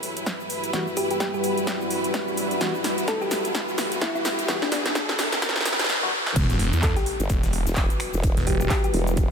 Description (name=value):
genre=bass house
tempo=128 BPM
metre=4/4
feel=swing 58% on 16ths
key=E minor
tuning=A4 = 440 Hz
part: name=deep dark ambient pad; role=sustained chords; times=0.1-9.3 s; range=G3 to B4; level=-30 LUFS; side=left 1 dB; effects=chorus, built-in reverb, sidechain pumping
part: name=big-room dance drum kit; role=drums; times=0.0-9.3 s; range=crash cymbal, finger snaps, handclaps, hi-hat, shaker, snare drum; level=-27 LUFS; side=equal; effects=high-pass filter on hats, high-pass filter on snare, high-pass filter on perc, high-pass filter on cymbals
part: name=riser and sub drop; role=sound effects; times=0.0-8.2 s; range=none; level=-31 LUFS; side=equal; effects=none
part: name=bright studio string section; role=texture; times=0.0-5.9 s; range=E4 to C#5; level=-33 LUFS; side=right 2 dB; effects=sidechain pumping
part: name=electronic kick drum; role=drums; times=0.3-9.3 s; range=none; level=-24 LUFS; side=equal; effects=high-pass filter on kick
part: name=percussive organ stab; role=stabs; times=0.7-6.1 s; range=E3 to F#4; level=-36 LUFS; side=left 2 dB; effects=none
part: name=thumb-piano-like synth pluck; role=melody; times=1.0-8.9 s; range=D4 to A4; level=-31 LUFS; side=left 1 dB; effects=chorus, analog delay
part: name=phased detuned saw bass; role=bass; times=6.4-8.7 s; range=E1 to E2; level=-24 LUFS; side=equal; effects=phaser, tube saturation, sidechain pumping
part: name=big rock drum kit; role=drums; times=6.4-9.3 s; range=hi-hat, snare drum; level=-41 LUFS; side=left 3 dB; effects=none
part: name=formant-sweep wobble bass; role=bass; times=7.2-9.3 s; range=E1 to G1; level=-24 LUFS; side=equal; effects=chorus, tube saturation, sidechain pumping
room=moderate huge ambient reverb, RT60 6.7 s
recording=dreamy mix soaked in reverb, high-pass filter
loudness=-21 LUFS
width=side -6 dB against mid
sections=0.0-6.4 A section; 6.4-9.3 B section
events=build-up 0.0-6.4; drum fill 0.0-5.9, 5.9-6.4; riser 0.0-5.9; filter sweep 0.0-6.4; drop 6.4-9.3; impact 6.4-8.2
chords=0.0 Emadd9